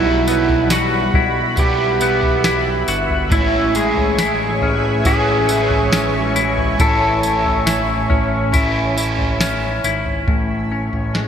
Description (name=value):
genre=dream pop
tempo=69 BPM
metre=4/4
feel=straight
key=A major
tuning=A4 = 441 Hz
part: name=pedal steel guitar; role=melody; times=0.0-9.4 s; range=E4 to A4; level=-20 LUFS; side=right 1 dB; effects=ping-pong delay
part: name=crunchy overdriven guitar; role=accompaniment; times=0.0-10.8 s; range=A2 to F#4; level=-24 LUFS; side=right 4 dB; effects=harmonic tremolo, wide subtle chorus
part: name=warm analog pad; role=sustained chords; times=0.0-11.3 s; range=G3 to C#6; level=-24 LUFS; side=equal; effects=chorus
part: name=semi-hollow electric guitar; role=arpeggios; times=0.0-11.3 s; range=A2 to F#4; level=-21 LUFS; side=left 3 dB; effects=wide subtle chorus, ping-pong delay
part: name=fat analog bass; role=bass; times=0.0-11.3 s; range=G1 to B1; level=-23 LUFS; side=equal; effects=none
part: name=soft vintage rhythm box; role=drums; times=0.3-11.3 s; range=kick drum, snare drum, tambourine, toms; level=-21 LUFS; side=equal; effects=gated reverb
room=wet lush hall reverb, RT60 2.8 s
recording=bright 1980s-style digital production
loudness=-14 LUFS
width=side -8 dB against mid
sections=0.0-10.3 A section; 10.3-11.3 B section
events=none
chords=0.0 Emadd9/B; 3.3 Amaj7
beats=0.71 1.58 2.45 | 3.32 4.19 5.06 5.93 | 6.80 7.67 8.54 9.41 | 10.28 11.15